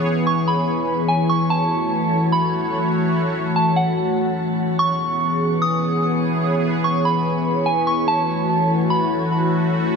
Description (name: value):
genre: hip hop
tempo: 146 BPM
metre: 4/4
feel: half-time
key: C# minor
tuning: A4 = 440 Hz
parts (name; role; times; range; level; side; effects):
- sweeping resonant pad; sustained chords; 0.0-10.0 s; E3 to C#5; -19 LUFS; left 1 dB; chorus
- soft synth bell; melody; 0.3-9.3 s; F#5 to D#6; -21 LUFS; right 1 dB; chorus, low-pass filter, tape echo
room: moderate shimmer reverb, RT60 8.5 s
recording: none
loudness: -17 LUFS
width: side -5 dB against mid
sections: 0.0-10.0 A section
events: none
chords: 0.0 C#m7; 1.5 F#m7; 4.8 C#m7; 8.1 F#m7